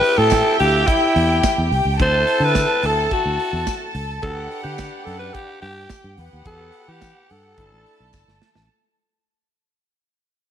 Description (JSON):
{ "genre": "disco", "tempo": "107 BPM", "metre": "4/4", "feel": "straight", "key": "unclear", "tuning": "A4 = 439 Hz", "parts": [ { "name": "raspy alto saxophone", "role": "melody", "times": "0.0-8.4 s", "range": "E4 to C5", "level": "-20 LUFS", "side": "equal", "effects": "none" }, { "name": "warm studio violin section", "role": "second line", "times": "0.0-8.7 s", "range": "G4 to A5", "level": "-23 LUFS", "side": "left 1 dB", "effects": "none" }, { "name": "dark horn section", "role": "stabs", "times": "0.0-8.4 s", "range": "A3 to E5", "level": "-28 LUFS", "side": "right 1 dB", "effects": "none" }, { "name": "modern studio drum kit", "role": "drums", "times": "0.0-8.7 s", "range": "hi-hat, kick drum, snare drum", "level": "-26 LUFS", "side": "right 1 dB", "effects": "none" }, { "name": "fingered electric bass", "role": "bass", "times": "0.2-8.7 s", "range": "G1 to E3", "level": "-22 LUFS", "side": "equal", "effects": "none" }, { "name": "tambourine", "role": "percussion", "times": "0.3-8.3 s", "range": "none", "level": "-35 LUFS", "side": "left 16 dB", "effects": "none" } ], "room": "moderate echo chamber reverb, RT60 1.6 s, small room ambience", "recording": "1960s-style stereo", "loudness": "-16 LUFS", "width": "side -9 dB against mid", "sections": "0.0-8.7 A section", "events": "fade-out 0.0-8.7; drum fill 8.1-8.7", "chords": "0.0 Am7; 2.0 D7; 4.2 Gmaj7/D; 6.2 Emadd9; 7.6 Gsus2" }